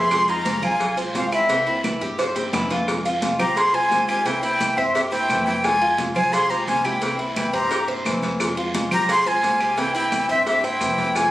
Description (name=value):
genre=latin, Cuban son and guajira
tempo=174 BPM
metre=4/4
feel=straight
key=F minor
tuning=A4 = 440 Hz
part: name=breathy jazz flute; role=melody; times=0.0-11.3 s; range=E5 to C6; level=-20 LUFS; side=equal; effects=none
part: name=raspy soprano saxophone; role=second line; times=0.0-11.3 s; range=C4 to Ab4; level=-29 LUFS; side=right 1 dB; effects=none
part: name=flamenco guitar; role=accompaniment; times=0.0-11.3 s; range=C3 to F4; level=-29 LUFS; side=left 1 dB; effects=none
part: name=upright bass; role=bass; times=0.0-11.3 s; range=C2 to G2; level=-36 LUFS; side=right 1 dB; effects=none
part: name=claves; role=percussion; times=0.1-11.3 s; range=none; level=-33 LUFS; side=right 1 dB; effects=none
part: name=congas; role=percussion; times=0.1-11.3 s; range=none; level=-31 LUFS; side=equal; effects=none
part: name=cowbell and bongos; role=percussion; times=0.1-11.3 s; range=none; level=-30 LUFS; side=left 2 dB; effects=none
part: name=guiro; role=percussion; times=0.1-11.3 s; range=none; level=-38 LUFS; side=right 2 dB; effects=none
part: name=maracas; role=percussion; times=0.1-11.3 s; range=none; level=-38 LUFS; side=right 2 dB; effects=none
part: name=Cuban tres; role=arpeggios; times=0.3-11.0 s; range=C4 to C5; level=-27 LUFS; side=right 1 dB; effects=none
room=wet large studio reverb, RT60 1.4 s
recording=recorded on a phone in the room, studio reverb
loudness=-18 LUFS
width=side -15 dB against mid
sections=0.0-2.9 A section; 2.9-11.3 B section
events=drum fill 2.2-2.9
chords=0.1 Fm7; 1.5 C7; 2.9 Fm7; 4.3 C7; 5.6 Fm7; 7.0 C7; 8.4 Fm7; 9.8 C7